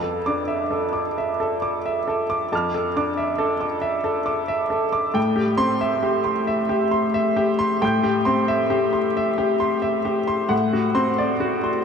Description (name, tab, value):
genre	neoclassical minimalist piano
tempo	45 BPM (dotted quarters)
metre	6/8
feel	rubato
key	unclear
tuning	A4 = 442 Hz
part	clear upright piano	solo	0.0-11.8 s	F2 to G6	-19 LUFS	equal	none
room	wet huge ambient reverb, RT60 7.5 s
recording	in a vast, echoing space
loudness	-19 LUFS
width	side -6 dB against mid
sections	0.0-11.8 A section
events	none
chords	0.0 Dmadd9/F; 5.2 Am7; 10.5 D7/A